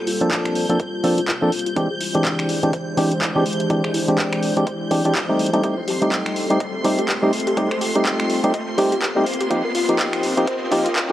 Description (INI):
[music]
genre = deep house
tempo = 124 BPM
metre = 4/4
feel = swing 58% on 16ths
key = unclear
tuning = A4 = 440 Hz
[part]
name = warbly tape-like pad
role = sustained chords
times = 0.0-11.1 s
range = G#3 to Eb5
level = -28 LUFS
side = left 2 dB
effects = chorus, built-in reverb, sidechain pumping
[part]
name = riser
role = sound effects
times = 0.1-11.1 s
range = none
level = -34 LUFS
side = right 1 dB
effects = none
[part]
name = airy breathy pad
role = texture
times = 0.0-11.1 s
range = E3 to B#4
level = -29 LUFS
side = left 1 dB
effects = chorus, sidechain pumping
[part]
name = string machine, violins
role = texture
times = 0.0-11.1 s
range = C6 to G6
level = -32 LUFS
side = equal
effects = ensemble chorus, sidechain pumping
[part]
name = analog pluck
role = arpeggios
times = 0.1-11.1 s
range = E4 to A5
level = -28 LUFS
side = left 1 dB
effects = none
[part]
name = house drum kit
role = drums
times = 0.1-11.1 s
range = finger snaps, handclaps, hi-hat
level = -25 LUFS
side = equal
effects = overdrive, vintage 12-bit sampler grit
[part]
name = percussive organ stab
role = stabs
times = 0.2-11.1 s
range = E3 to A4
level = -20 LUFS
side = equal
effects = chorus, sidechain pumping, analog delay
[part]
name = electronic kick drum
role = drums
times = 0.3-11.1 s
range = none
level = -31 LUFS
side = equal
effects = none
[sound]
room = light reverb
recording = dry, gritty hardware recording, high-pass filter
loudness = -18 LUFS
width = side -13 dB against mid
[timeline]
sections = 0.0-11.1 A section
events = build-up 0.0-11.1; filter sweep on synth stab 0.0-11.1; filter sweep on ambient pad 0.0-11.1; filter sweep on synth arpeggio sound 0.0-11.1; riser 0.1-11.1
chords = 0.0 Gm11; 1.8 E7alt; 5.4 Am7b5; 9.5 F9sus4